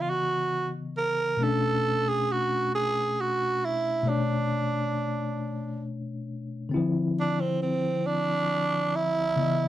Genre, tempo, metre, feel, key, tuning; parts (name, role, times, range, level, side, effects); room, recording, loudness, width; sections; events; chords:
R&B; 45 BPM (dotted quarters); 6/8; straight; B dorian; A4 = 440 Hz
growling tenor saxophone; melody; 0.0-9.7 s; C4 to A#4; -26 LUFS; right 3 dB
tine electric piano; accompaniment; 0.0-9.7 s; B2 to D#5; -29 LUFS; left 3 dB; fast tremolo
light reverb; dry, close 1970s-style studio recording; -25 LUFS; side -13 dB against mid
0.0-9.7 A section
0.0 C#m9; 1.4 Bm9; 6.7 Dm9